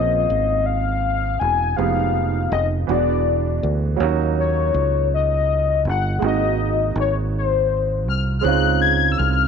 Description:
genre	slow six-eight R&B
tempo	54 BPM (dotted quarters)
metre	6/8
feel	straight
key	Db major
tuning	A4 = 441 Hz
part	warm velvety synth lead	melody	0.0-9.5 s	C5 to Ab6	-21 LUFS	left 10 dB	chorus
part	warm baby grand piano	accompaniment	0.0-9.5 s	C3 to Ab4	-24 LUFS	right 14 dB	none
part	fingered electric bass	bass	0.0-9.5 s	Fb1 to Eb2	-21 LUFS	right 1 dB	none
room	light reverb, studio ambience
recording	1960s-style stereo with parts hard left and right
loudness	-17 LUFS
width	side -6 dB against mid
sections	0.0-8.4 A section; 8.4-9.5 B section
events	none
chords	0.0 Bbm9; 1.8 Fm7b5; 2.9 E9; 4.0 Ebm7; 6.2 Ab7; 8.4 Dbmaj7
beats	0.66 | 1.77 2.88 | 3.99 5.10 | 6.21 7.32 | 8.44

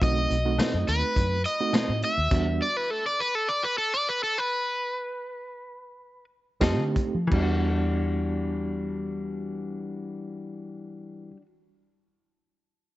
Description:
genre	straight-eighth soul blues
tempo	83-104 BPM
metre	4/4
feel	straight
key	E minor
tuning	A4 = 437 Hz
part	overdriven semi-hollow guitar	melody	0.0-6.2 s	A4 to E5	-26 LUFS	equal	none
part	overdriven reed electric piano	accompaniment	0.0-2.7, 6.6-11.3 s	G3 to G4	-31 LUFS	right 4 dB	fast tremolo
part	vintage muted fingered electric bass	bass	0.0-2.6, 6.6-11.3 s	B1 to F3	-28 LUFS	equal	none
part	crunchy breakbeat drum kit	drums	0.0-2.4, 6.6-7.5 s	crash cymbal, hi-hat, kick drum, snare drum, tambourine	-28 LUFS	equal	none
part	direct-recorded clean electric guitar	stabs	0.6-1.9, 6.6-11.5 s	B2 to A4	-31 LUFS	left 3 dB	none
room	light reverb, studio reverb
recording	nothing above 7.8 kHz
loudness	-24 LUFS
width	side -16 dB against mid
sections	0.0-7.3 A section; 7.3-10.2 B section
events	slowing down 2.3-7.3; stop 2.3-6.6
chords	0.0 B7b9; 2.3 Em9; 6.6 F7; 7.3 Em9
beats	| 0.01 0.59 1.16 1.74 | 2.31 2.89 3.47 4.06 | 4.67 5.30 5.94 6.62 | 7.32 8.04 8.76 9.48

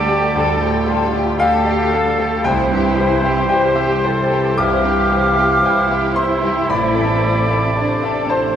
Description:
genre	cinematic, emotional film score for orchestra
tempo	57 BPM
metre	4/4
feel	rubato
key	C major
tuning	A4 = 445 Hz
part	muted studio violin section	melody	0.0-8.6 s	G4 to C5	-23 LUFS	left 3 dB	none
part	hollow concert flute	second line	0.0-8.6 s	F5 to D6	-23 LUFS	left 2 dB	none
part	muted studio violin section	second line	0.0-8.6 s	A3 to G4	-30 LUFS	left 3 dB	none
part	warm oboe	second line	0.0-8.6 s	A4 to F5	-21 LUFS	right 2 dB	none
part	bright baby grand piano	accompaniment	0.0-8.6 s	A1 to D6	-22 LUFS	left 1 dB	none
part	muted studio viola section	accompaniment	0.0-8.6 s	G3 to C4	-28 LUFS	right 2 dB	none
part	warm French horn section	sustained chords	0.0-8.6 s	C3 to A4	-24 LUFS	left 2 dB	none
part	concert harp	arpeggios	0.0-8.6 s	A2 to A5	-29 LUFS	left 7 dB	none
part	muted studio cello section	bass	0.0-8.6 s	D4 to A4	-23 LUFS	right 2 dB	none
part	muted studio double bass section	bass	0.0-8.6 s	A1 to D2	-22 LUFS	right 3 dB	none
room	wet scoring stage reverb, RT60 1.4 s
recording	none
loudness	-14 LUFS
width	side -9 dB against mid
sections	0.0-8.6 A section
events	none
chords	0.0 Gsus2/D; 2.4 C; 6.7 Am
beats	0.35 1.39 | 2.45 3.50 4.58 5.63 | 6.70 7.77

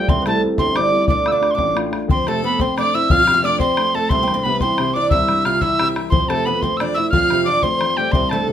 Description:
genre	celtic folk, Celtic jig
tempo	119 BPM (dotted quarters)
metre	6/8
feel	straight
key	unclear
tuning	A4 = 440 Hz
part	breathy mellow tin whistle	melody	0.0-8.5 s	G5 to F6	-18 LUFS	right 1 dB	none
part	oud	second line	0.0-8.5 s	G3 to F4	-22 LUFS	right 4 dB	none
part	dark grand piano	accompaniment	0.0-8.5 s	G1 to F4	-23 LUFS	left 4 dB	none
part	bodhran	percussion	0.1-8.4 s	none	-21 LUFS	left 2 dB	none
part	rich fiddle	second line	2.1-8.5 s	G4 to F5	-27 LUFS	left 7 dB	none
room	moderate studio ambience, RT60 0.5 s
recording	minimal, uncompressed stereo recording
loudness	-15 LUFS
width	side -10 dB against mid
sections	0.0-2.1 A section; 2.1-8.5 A section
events	none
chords	0.1 C; 1.1 Dm; 2.1 F; 4.1 C; 6.1 F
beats	| 0.09 0.59 | 1.09 1.59 | 2.09 2.60 | 3.10 3.60 | 4.11 4.61 | 5.11 5.62 | 6.12 6.62 | 7.13 7.63 | 8.14

